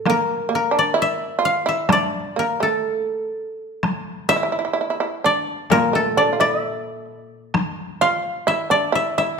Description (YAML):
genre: japanese traditional, Japanese chamber music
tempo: 64 BPM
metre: 2/4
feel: uneven beats, rubato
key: D hirajoshi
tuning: A4 = 441 Hz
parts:
  - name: koto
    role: melody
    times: 0.0-9.4 s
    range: A4 to F5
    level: -21 LUFS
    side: left 2 dB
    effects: none
  - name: koto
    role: accompaniment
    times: 0.0-0.9, 5.7-8.5 s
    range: A2 to Bb2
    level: -27 LUFS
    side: left 7 dB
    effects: none
  - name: shamisen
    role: second line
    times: 0.1-9.4 s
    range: A3 to F4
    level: -22 LUFS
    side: right 4 dB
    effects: none
  - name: taiko ensemble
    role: percussion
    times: 0.1-7.8 s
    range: none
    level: -23 LUFS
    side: left 2 dB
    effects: none
room: moderate recital hall reverb, RT60 1.6 s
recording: minimal, uncompressed stereo recording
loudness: -18 LUFS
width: side -5 dB against mid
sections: 0.0-9.4 A section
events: none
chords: none